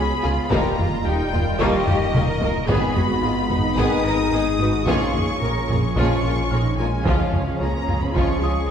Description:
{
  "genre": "cinematic, hybrid orchestral and electronic film score",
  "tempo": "110 BPM",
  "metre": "4/4",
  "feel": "straight",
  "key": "G# dorian",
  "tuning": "A4 = 440 Hz",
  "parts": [
    { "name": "warm symphonic violin section", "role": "melody", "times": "0.0-8.7 s", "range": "D#5 to D#6", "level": "-28 LUFS", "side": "left 2 dB", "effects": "none" },
    { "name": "warm symphonic violin section", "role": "second line", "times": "0.0-8.5 s", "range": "B3 to E#5", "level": "-30 LUFS", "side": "left 3 dB", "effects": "none" },
    { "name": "warm studio viola section", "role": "accompaniment", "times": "0.0-8.5 s", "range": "E#3 to G#4", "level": "-29 LUFS", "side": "right 1 dB", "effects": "none" },
    { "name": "hollow soft pad", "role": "sustained chords", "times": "0.0-8.7 s", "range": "E#3 to D#5", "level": "-30 LUFS", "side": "equal", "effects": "ensemble chorus" },
    { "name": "mellow French horn section", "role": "sustained chords", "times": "0.0-8.7 s", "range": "D#3 to D#4", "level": "-27 LUFS", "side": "left 3 dB", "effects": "none" },
    { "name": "round analog bass", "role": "riff", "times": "0.0-8.7 s", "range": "C#2 to A#3", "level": "-27 LUFS", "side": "right 2 dB", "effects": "none" },
    { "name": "dark symphonic cello section", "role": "bass", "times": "0.0-8.7 s", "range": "C#4 to B4", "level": "-28 LUFS", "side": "right 1 dB", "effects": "none" },
    { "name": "dark symphonic double bass section", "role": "bass", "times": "0.0-8.5 s", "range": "G#1 to D#2", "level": "-30 LUFS", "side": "right 2 dB", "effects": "none" },
    { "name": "detuned saw bass", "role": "bass", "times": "0.0-8.7 s", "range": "D#1 to C#2", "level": "-30 LUFS", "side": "equal", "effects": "none" },
    { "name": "felt-muted upright piano", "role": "texture", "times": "0.0-8.7 s", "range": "C#6 to E#6", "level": "-35 LUFS", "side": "left 2 dB", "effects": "none" },
    { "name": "mellow trombone section", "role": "sustained chords", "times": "0.5-8.3 s", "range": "D#3 to G#3", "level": "-32 LUFS", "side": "right 2 dB", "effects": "none" },
    { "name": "taiko ensemble", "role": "drums", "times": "0.5-8.7 s", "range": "none", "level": "-24 LUFS", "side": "equal", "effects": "none" }
  ],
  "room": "wet scoring stage reverb, RT60 1.7 s",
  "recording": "heard from further back in the room",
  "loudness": "-18 LUFS",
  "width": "side -8 dB against mid",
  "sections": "0.0-8.7 A section",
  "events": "drum fill 1.9-2.7",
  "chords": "0.0 C#; 0.5 D#add9; 2.7 G#m; 4.9 A#m7; 7.1 C#"
}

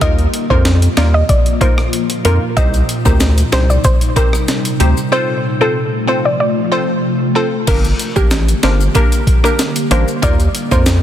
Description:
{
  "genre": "dancehall",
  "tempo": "94 BPM",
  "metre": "4/4",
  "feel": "straight",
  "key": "G minor",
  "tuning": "A4 = 440 Hz",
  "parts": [
    { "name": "soft round pluck", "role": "melody", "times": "0.0-10.8 s", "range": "G4 to Eb5", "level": "-20 LUFS", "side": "right 1 dB", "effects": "chorus, tape echo" },
    { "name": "wavetable chord stab", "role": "accompaniment", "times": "0.0-10.9 s", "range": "Bb3 to C5", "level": "-20 LUFS", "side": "left 1 dB", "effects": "phaser" },
    { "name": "ethereal airy pad", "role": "sustained chords", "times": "0.0-11.0 s", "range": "Bb2 to G4", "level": "-20 LUFS", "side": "left 1 dB", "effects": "ensemble chorus, built-in reverb, sidechain pumping" },
    { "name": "saturated sub bass", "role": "bass", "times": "0.0-11.0 s", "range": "G1 to F2", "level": "-13 LUFS", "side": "equal", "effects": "none" },
    { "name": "breakbeat sampler-style drum kit", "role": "drums", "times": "0.0-11.0 s", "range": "crash cymbal, hi-hat, kick drum, rim click, snare drum", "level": "-14 LUFS", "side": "equal", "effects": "none" },
    { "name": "maracas", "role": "percussion", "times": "2.6-11.0 s", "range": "none", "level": "-29 LUFS", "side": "left 7 dB", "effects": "none" }
  ],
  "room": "light reverb",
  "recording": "dense, heavily limited modern master",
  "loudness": "-11 LUFS",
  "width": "side -11 dB against mid",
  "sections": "0.0-7.7 A section; 7.7-11.0 B section",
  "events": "break 5.1-7.7",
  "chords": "0.0 Ebsus2; 2.6 Cm; 5.1 F; 7.7 Gm; 10.2 Ebsus2"
}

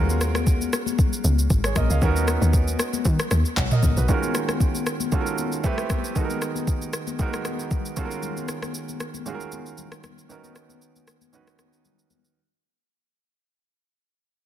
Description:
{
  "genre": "amapiano",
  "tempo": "116 BPM",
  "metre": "4/4",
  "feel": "swing 55% on 16ths",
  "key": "unclear",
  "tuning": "A4 = 440 Hz",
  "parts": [
    { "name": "warm grand piano", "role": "accompaniment", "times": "0.0-12.4 s", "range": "Eb3 to F#5", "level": "-29 LUFS", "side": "right 6 dB", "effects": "none" },
    { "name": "woody log drum bass", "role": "bass", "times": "0.0-4.1 s", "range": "Ab1 to D#3", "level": "-22 LUFS", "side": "equal", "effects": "none" },
    { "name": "smooth R&B drum kit", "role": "drums", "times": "0.1-12.4 s", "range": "handclaps, kick drum, rim click, shaker, toms", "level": "-24 LUFS", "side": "equal", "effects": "overdrive, soft clipping on snare" },
    { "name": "congas", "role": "percussion", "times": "0.1-12.2 s", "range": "none", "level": "-31 LUFS", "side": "left 11 dB", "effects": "none" }
  ],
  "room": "little or no reverb",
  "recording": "dense, heavily limited modern master",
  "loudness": "-21 LUFS",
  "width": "side -11 dB against mid",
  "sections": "0.0-4.1 A section; 4.1-12.4 B section",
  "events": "fade-out 4.1-12.4",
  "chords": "0.0 Gbmaj9; 2.0 Bmaj9/D#; 4.1 Ebm11; 5.6 Am9; 6.2 Abm9/Eb; 8.0 Gbmaj9/Eb; 10.3 Bmaj9/D#"
}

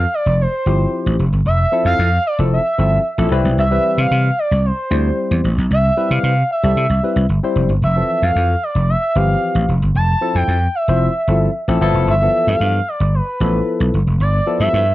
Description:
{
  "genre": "early-eighties boogie funk",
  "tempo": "113 BPM",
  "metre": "4/4",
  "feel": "straight",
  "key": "C major",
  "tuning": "A4 = 441 Hz",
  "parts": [
    { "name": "gliding portamento lead", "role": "melody", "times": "0.0-14.9 s", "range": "B4 to A5", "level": "-19 LUFS", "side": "right 1 dB", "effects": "chorus, slapback echo" },
    { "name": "barky tine electric piano", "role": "accompaniment", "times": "0.0-14.8 s", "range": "E3 to C5", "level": "-20 LUFS", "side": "left 4 dB", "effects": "overdrive, wide subtle chorus" },
    { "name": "vintage slap bass", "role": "bass", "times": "0.0-14.9 s", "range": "F1 to C3", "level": "-16 LUFS", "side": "equal", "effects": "none" }
  ],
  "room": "little or no reverb",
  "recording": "dry, close 1970s-style studio recording",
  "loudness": "-14 LUFS",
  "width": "side -16 dB against mid",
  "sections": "0.0-14.9 A section",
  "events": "none",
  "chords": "0.0 Fmaj7; 3.3 Cmaj7; 7.8 Fmaj7; 11.8 G13"
}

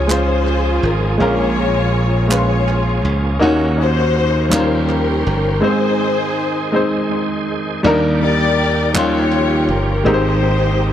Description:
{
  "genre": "slow gospel",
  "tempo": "54 BPM (dotted quarters)",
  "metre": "6/8",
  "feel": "straight",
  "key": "Eb major from 7.8 s",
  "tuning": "A4 = 440 Hz",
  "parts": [
    { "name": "muted chamber string section", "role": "melody", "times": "0.0-10.9 s", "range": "Db4 to D5", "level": "-20 LUFS", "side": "left 3 dB", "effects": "analog delay" },
    { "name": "clear baby grand piano", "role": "accompaniment", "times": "0.0-10.9 s", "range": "Ab2 to C6", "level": "-18 LUFS", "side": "equal", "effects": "analog delay" },
    { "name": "bright tonewheel organ", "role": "sustained chords", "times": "0.0-10.9 s", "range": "Eb3 to D5", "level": "-25 LUFS", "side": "right 3 dB", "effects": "slow rotary speaker, overdrive, chorus vibrato" },
    { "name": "glassy slap bass", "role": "bass", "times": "0.0-10.9 s", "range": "G1 to Eb2", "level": "-18 LUFS", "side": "equal", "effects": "none" },
    { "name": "group handclap", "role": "percussion", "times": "0.1-4.9, 9.0-9.3 s", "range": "none", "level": "-25 LUFS", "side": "right 2 dB", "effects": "analog delay" }
  ],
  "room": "moderate spring reverb, RT60 1.5 s, small room ambience",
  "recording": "echo-heavy mix",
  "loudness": "-14 LUFS",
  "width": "side -10 dB against mid",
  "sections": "0.0-7.8 A section; 7.8-10.9 A section",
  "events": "break 5.6-7.8",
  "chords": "0.0 Dbmaj7; 1.2 Bbm7; 3.4 Ebm7; 4.5 Eb13; 5.6 Ab; 7.8 Ebmaj7; 9.0 Eb13; 10.1 Abmaj7"
}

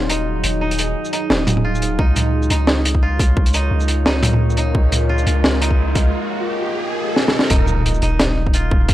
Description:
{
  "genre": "half-time drum and bass",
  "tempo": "174 BPM",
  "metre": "4/4",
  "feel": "swing 56% on 16ths, half-time",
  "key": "Eb minor",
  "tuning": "A4 = 440 Hz",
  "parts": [
    { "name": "deep dark ambient pad", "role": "sustained chords", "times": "0.0-8.9 s", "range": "Gb3 to Eb5", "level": "-25 LUFS", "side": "equal", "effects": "chorus, built-in reverb, sidechain pumping" },
    { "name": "koto", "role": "arpeggios", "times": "0.0-8.9 s", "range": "Eb4 to F4", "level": "-26 LUFS", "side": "right 2 dB", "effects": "low-pass filter, tape echo" },
    { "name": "long sustained 808-style bass", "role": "bass", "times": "0.0-8.9 s", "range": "Eb1 to Db2", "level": "-19 LUFS", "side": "equal", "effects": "tube saturation" },
    { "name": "crunchy breakbeat drum kit", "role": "drums", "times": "0.1-8.9 s", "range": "hi-hat, shaker, snare drum, toms", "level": "-18 LUFS", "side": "equal", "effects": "none" },
    { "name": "electronic kick drum", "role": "drums", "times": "2.0-8.9 s", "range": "none", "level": "-16 LUFS", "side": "equal", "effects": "none" },
    { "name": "riser and impact", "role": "sound effects", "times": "4.0-8.9 s", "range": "none", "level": "-26 LUFS", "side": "equal", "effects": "none" }
  ],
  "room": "studio ambience",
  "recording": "dry, gritty hardware recording",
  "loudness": "-15 LUFS",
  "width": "side -14 dB against mid",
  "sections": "0.0-7.5 A section; 7.5-8.9 B section",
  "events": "build-up 0.0-7.5; riser 4.0-7.5; break 6.1-7.5; drum fill 7.2-7.5; drop 7.5-8.9; impact 7.5-8.9",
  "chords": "0.0 Ebm; 2.0 Db6; 7.5 Ebm"
}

